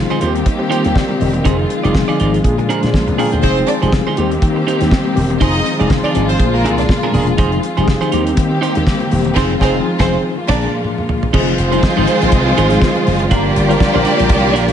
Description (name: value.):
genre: disco.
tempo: 121 BPM.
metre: 4/4.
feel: swing 56% on 16ths.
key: F dorian.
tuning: A4 = 440 Hz.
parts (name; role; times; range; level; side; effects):
mellow tine electric piano; accompaniment; 0.0-14.7 s; Bb2 to G5; -19 LUFS; left 4 dB; medium stereo tremolo.
dark studio string section; sustained chords; 0.0-14.7 s; D3 to G4; -20 LUFS; equal; none.
slap bass with an envelope filter; bass; 0.0-14.7 s; E1 to Eb3; -18 LUFS; equal; none.
electric guitar at the edge of break-up; accompaniment; 0.1-14.7 s; D4 to D5; -21 LUFS; right 6 dB; none.
damped 70s drum kit; drums; 0.1-14.7 s; crash cymbal, hi-hat, kick drum, snare drum, toms; -18 LUFS; equal; gated reverb.
congas; percussion; 0.1-14.7 s; none; -26 LUFS; left 6 dB; none.
dark studio violin section; second line; 3.4-14.7 s; Ab3 to Eb5; -18 LUFS; right 2 dB; none.
room: light reverb, small room ambience.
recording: nothing above 10.7 kHz.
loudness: -12 LUFS.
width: side -9 dB against mid.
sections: 0.0-11.3 A section; 11.3-14.7 B section.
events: tine electric piano fill 2.4-3.4; band accent 9.4-11.3; drum fill 10.8-11.3.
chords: 0.2 Eb6; 1.5 Fm7; 2.4 Bb7; 3.4 Fm7; 4.2 Eb6; 5.4 Fm7; 6.4 Bb7; 7.4 Fm7; 8.1 Eb6; 9.4 Fm7; 10.4 Bb7; 11.3 Fm7; 13.3 Gm7.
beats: 0.46 0.96 | 1.45 1.95 2.44 2.94 | 3.43 3.93 4.42 4.92 | 5.41 5.91 6.40 6.89 | 7.39 7.88 8.38 8.87 | 9.37 9.86 10.35 10.85 | 11.34 11.83 12.33 12.82 | 13.31 13.81 14.30.